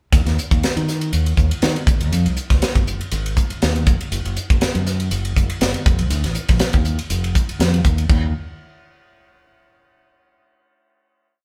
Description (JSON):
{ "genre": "electric jazz fusion", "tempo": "120 BPM", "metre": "4/4", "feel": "swing 54% on 16ths", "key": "unclear", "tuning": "A4 = 442 Hz", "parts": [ { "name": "modern bright fingered electric bass", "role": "bass", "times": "0.1-8.3 s", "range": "F1 to Eb3", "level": "-23 LUFS", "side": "equal", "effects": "none" }, { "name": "crisp fusion drum kit", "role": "drums", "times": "0.1-8.2 s", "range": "crash cymbal, hi-hat, kick drum, ride cymbal, snare drum", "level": "-21 LUFS", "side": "equal", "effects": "none" } ], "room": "moderate stone room reverb, RT60 1.1 s", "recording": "band playing live in one room", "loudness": "-19 LUFS", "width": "mono", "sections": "0.1-8.1 A section; 8.1-10.1 final note", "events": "none", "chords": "none" }